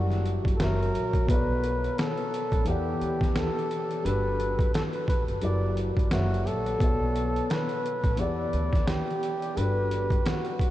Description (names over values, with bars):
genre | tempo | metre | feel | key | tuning
lo-fi hip hop | 87 BPM | 4/4 | swing 56% on 16ths | B minor | A4 = 438 Hz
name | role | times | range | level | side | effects
breathy flugelhorn | melody | 0.0-10.7 s | F#4 to D5 | -30 LUFS | equal | none
felt-muted upright piano | accompaniment | 0.0-10.7 s | B2 to F#5 | -31 LUFS | left 2 dB | cassette tape
upright bass | bass | 0.0-10.1 s | F#1 to E2 | -30 LUFS | equal | none
trip hop sampler-style drum kit | drums | 0.1-10.7 s | hi-hat, kick drum, snare drum | -28 LUFS | equal | overdrive, vintage 12-bit sampler grit
room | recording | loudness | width
moderate huge ambient reverb, RT60 7.9 s | dreamy mix soaked in reverb, cassette tape | -24 LUFS | side -14 dB against mid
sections
0.0-10.7 A section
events
none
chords
0.0 F#7b9b13; 0.6 F#7; 1.3 Bm7; 2.7 Em7; 4.0 Gmaj7; 5.4 F#7b9b13; 6.1 F#7; 6.8 Bm7; 8.2 Em7; 9.6 Gmaj7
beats
0.60 | 1.29 1.98 2.67 3.36 | 4.05 4.74 5.43 6.12 | 6.80 7.49 8.18 8.87 | 9.56 10.25